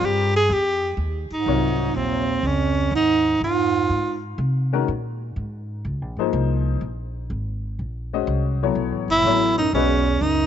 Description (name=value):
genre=modal jazz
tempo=124 BPM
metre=4/4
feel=swing 68% on 8ths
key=Eb dorian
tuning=A4 = 444 Hz
part: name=warm tenor saxophone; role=melody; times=0.0-4.2, 9.1-10.5 s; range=C4 to G#4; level=-21 LUFS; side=equal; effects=none
part: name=warm upright piano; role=accompaniment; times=0.0-10.0 s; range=C3 to Eb5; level=-25 LUFS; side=left 12 dB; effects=none
part: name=upright bass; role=bass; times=0.0-10.5 s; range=F#1 to C3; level=-25 LUFS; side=equal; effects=none
part: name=mellow bass clarinet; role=second line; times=1.3-4.2, 9.1-10.5 s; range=Eb2 to A2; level=-25 LUFS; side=right 10 dB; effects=none
room=light reverb, studio ambience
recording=1960s-style stereo with parts hard left and right, nothing above 7.8 kHz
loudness=-19 LUFS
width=side -9 dB against mid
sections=1.0-10.5 A section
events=none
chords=0.0 A#69; 1.0 Eb9sus4; 8.8 B9sus4